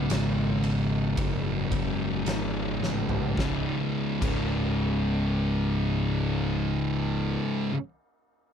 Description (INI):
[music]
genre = stoner and doom metal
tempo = 53 BPM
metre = 4/4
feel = straight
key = unclear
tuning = A4 = 440 Hz
[part]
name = thick fuzz guitar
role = riff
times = 0.0-7.7 s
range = C#2 to C#3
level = -29 LUFS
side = left 8 dB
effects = distortion
[part]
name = thick fuzz guitar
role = riff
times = 0.0-7.7 s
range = C#2 to C#3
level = -30 LUFS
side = right 9 dB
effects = distortion
[part]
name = fuzz picked electric bass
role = bass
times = 0.0-7.4 s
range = C#1 to A1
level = -32 LUFS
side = equal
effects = overdrive
[part]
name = oversized low-tuned drum kit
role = drums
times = 0.1-4.5 s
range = crash cymbal, kick drum, ride cymbal, snare drum, toms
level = -34 LUFS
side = equal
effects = none
[sound]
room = light reverb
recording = none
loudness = -25 LUFS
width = side -8 dB against mid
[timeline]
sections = 0.0-3.4 A section; 3.4-7.9 B section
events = slowing down 0.0-3.4; drum fill 2.8-3.4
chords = 0.0 C#5